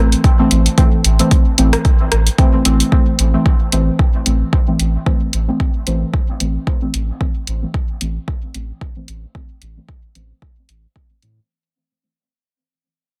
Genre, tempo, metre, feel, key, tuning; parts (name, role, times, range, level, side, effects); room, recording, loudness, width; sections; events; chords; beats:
dub techno; 112 BPM; 4/4; swing 56% on 16ths; A minor; A4 = 440 Hz
deep mellow chord stab; stabs; 0.0-11.4 s; E3 to C4; -21 LUFS; equal; chorus, phaser, sidechain pumping, dub echo
soft dub sub bass; bass; 0.0-11.4 s; A1 to A2; -18 LUFS; equal; sidechain pumping
deep house drum kit; drums; 0.1-11.3 s; hi-hat, rim click; -22 LUFS; equal; overdrive
electronic kick drum; drums; 0.2-11.1 s; -16 LUFS; equal; overdrive
little or no reverb; dense, heavily limited modern master; -15 LUFS; mono
0.0-2.9 A section; 2.9-11.5 B section
fade-out 2.9-11.5; filter sweep on synth stab 2.9-11.5
0.0 Am
0.24 | 0.78 1.31 1.85 2.38 | 2.92 3.46 3.99 4.53 | 5.06 5.60 6.13 6.67 | 7.21 7.74 8.28 8.81 | 9.35 9.88 10.42 10.96